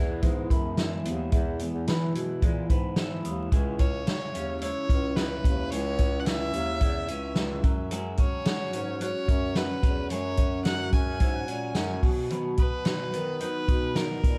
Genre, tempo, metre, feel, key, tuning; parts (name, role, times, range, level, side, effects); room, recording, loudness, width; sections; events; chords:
jangly indie pop; 109 BPM; 4/4; straight; C# minor; A4 = 441 Hz
fingerpicked steel-string acoustic guitar; accompaniment; 0.0-14.4 s; B2 to F#4; -38 LUFS; equal
electric guitar through a small old amp; arpeggios; 0.0-14.4 s; B2 to B4; -37 LUFS; equal; phaser
warm bass clarinet; bass; 0.0-14.4 s; C#2 to E3; -36 LUFS; equal
vintage drum kit; drums; 0.2-14.4 s; hi-hat, kick drum, snare drum; -29 LUFS; equal
rich violin; melody; 3.8-14.4 s; A#4 to G#5; -36 LUFS; equal
little or no reverb; dark, warm production, vinyl crackle; -27 LUFS; mono
0.0-3.5 A section; 3.5-14.4 B section
0.0 E; 3.5 C#m; 7.6 F#sus2; 12.0 B